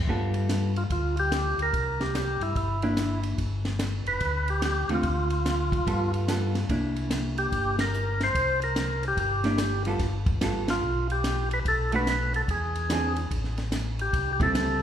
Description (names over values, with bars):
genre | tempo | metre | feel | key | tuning
soul jazz organ trio | 145 BPM | 4/4 | swing 65% on 8ths | G mixolydian | A4 = 440 Hz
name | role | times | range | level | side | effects
mellow tonewheel organ | bass | 0.0-14.8 s | F1 to G2 | -29 LUFS | left 1 dB | chorus vibrato, slow rotary speaker
vintage hollow-body jazz guitar | accompaniment | 0.1-14.8 s | D3 to A4 | -30 LUFS | right 1 dB | none
compact cocktail drum kit | drums | 0.1-14.7 s | hi-hat, kick drum, ride cymbal, snare drum | -31 LUFS | equal | none
percussive tonewheel organ | melody | 0.8-14.8 s | E4 to C5 | -28 LUFS | equal | slow rotary speaker
room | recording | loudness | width
wet recital hall reverb, RT60 1.6 s | recorded in a church or concert hall | -24 LUFS | side -9 dB against mid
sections
0.1-14.8 A section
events
band accent 7.7, 10.6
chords
0.1 G9; 1.7 C9; 3.4 G7; 5.0 Dm; 5.9 G9; 6.7 C9; 10.0 G9; 11.7 Bm7; 12.5 Eaug7; 13.3 Am7